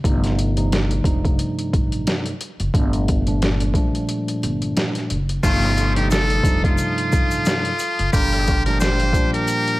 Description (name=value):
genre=hip hop, boom-bap hip-hop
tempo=89 BPM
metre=4/4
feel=swing 56% on 16ths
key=unclear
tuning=A4 = 437 Hz
part: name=mellow tine electric piano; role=accompaniment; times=0.0-9.8 s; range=G2 to A4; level=-24 LUFS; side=right 1 dB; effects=slow stereo tremolo
part: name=upright bass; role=bass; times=0.0-9.4 s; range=F1 to Bb1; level=-22 LUFS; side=equal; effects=none
part: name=trip hop sampler-style drum kit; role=drums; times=0.0-9.8 s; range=crash cymbal, hi-hat, kick drum, snare drum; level=-21 LUFS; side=equal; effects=overdrive
part: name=trumpet with metal mute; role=melody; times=5.4-9.8 s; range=F4 to C5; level=-22 LUFS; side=equal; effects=none
part: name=bright tonewheel organ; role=sustained chords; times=5.4-9.8 s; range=G4 to Eb6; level=-31 LUFS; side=equal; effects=overdrive, slow rotary speaker
part: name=clear horn section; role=stabs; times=5.4-8.6 s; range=G3 to C5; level=-32 LUFS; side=left 1 dB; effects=tape echo
part: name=tube shaker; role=percussion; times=5.4-9.7 s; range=none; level=-36 LUFS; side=left 5 dB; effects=none
room=small room ambience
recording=vinyl crackle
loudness=-17 LUFS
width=side -19 dB against mid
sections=0.0-5.4 A section; 5.4-9.8 B section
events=break 4.1-5.4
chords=0.0 F7; 2.7 Gm7; 5.4 F7; 8.1 Gm7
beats=| 0.04 0.72 1.39 2.07 | 2.74 3.41 4.09 4.76 | 5.44 6.11 6.79 7.46 | 8.13 8.81 9.48